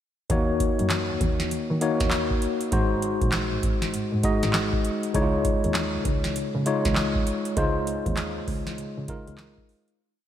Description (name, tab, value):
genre	R&B, new jack swing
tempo	99 BPM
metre	4/4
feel	swing 63% on 16ths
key	unclear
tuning	A4 = 443 Hz
part	tine electric piano	accompaniment	0.3-10.0 s	Ab3 to Eb5	-26 LUFS	left 2 dB	medium stereo tremolo, slapback echo
part	rich double bass	bass	0.3-9.4 s	Ab1 to Eb3	-30 LUFS	right 1 dB	none
part	booming analog drum machine	drums	0.3-10.0 s	handclaps, hi-hat, kick drum, snare drum	-27 LUFS	right 1 dB	none
room	moderate lush hall reverb, RT60 2.6 s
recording	big arena sound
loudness	-22 LUFS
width	side -10 dB against mid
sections	0.3-10.0 verse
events	fade-out 7.6-10.0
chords	0.3 Ebm7; 2.7 Ab7; 5.1 Dbadd9